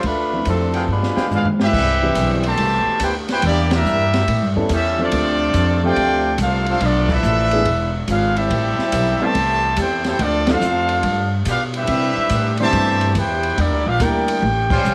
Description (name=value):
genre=jazz, big band swing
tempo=142 BPM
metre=4/4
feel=swing 66% on 8ths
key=C major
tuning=A4 = 442 Hz
part: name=upright bass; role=bass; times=0.0-14.9 s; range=E1 to C3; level=-23 LUFS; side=equal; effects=none
part: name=open jazz drum kit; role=drums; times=0.0-14.9 s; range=crash cymbal, hi-hat, kick drum, ride cymbal, snare drum, toms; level=-28 LUFS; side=equal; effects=none
part: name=clear saxophone section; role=melody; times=0.1-1.6 s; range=F3 to B4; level=-25 LUFS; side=equal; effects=slapback echo
part: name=warm concert grand piano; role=accompaniment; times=0.3-14.4 s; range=C3 to E5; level=-26 LUFS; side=equal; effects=none
part: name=bright trumpet section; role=stabs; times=0.7-1.3 s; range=Ab4 to G5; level=-32 LUFS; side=equal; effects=none
part: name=clear trombone section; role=second line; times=0.9-14.9 s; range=B2 to G4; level=-28 LUFS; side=equal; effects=none
part: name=bright trumpet section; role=melody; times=1.3-14.9 s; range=G3 to A5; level=-22 LUFS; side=equal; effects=none
room=light reverb, small room ambience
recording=none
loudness=-18 LUFS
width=mono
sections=0.0-1.7 A section; 1.7-14.9 B section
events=drum fill 0.9-1.7, 14.4-14.9; band accent 3.6, 7.0, 10.4, 14.6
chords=0.0 Dm7; 0.9 G7b9; 1.7 Cmaj7; 3.4 Em7b5; 4.3 A7; 5.1 Dm7; 6.8 Bm7b5; 7.7 E7; 8.5 Am7; 10.2 Dm7; 11.0 G7; 11.9 Cmaj7; 13.6 Em7b5; 14.4 A7alt